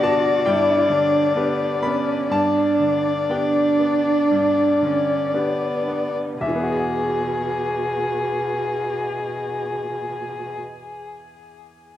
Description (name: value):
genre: neoclassical piano and strings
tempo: 55-71 BPM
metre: 4/4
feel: rubato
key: unclear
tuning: A4 = 440 Hz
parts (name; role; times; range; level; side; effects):
- muted violin; melody; 0.0-10.6 s; G#4 to D5; -22 LUFS; left 4 dB; plate reverb, tape echo
- muted cello; second line; 0.0-10.6 s; B2 to F#4; -24 LUFS; right 5 dB; none
- bright upright piano; accompaniment; 0.0-12.0 s; E2 to B5; -26 LUFS; left 1 dB; none
- muted viola; accompaniment; 0.0-10.6 s; D4 to F#4; -30 LUFS; right 2 dB; none
room: wet small room reverb, RT60 0.5 s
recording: rough home demo mix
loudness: -19 LUFS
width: side -12 dB against mid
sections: 0.0-6.4 A section; 6.4-10.6 B section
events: slowing down 0.0-6.4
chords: 0.0 G; 6.4 Eadd9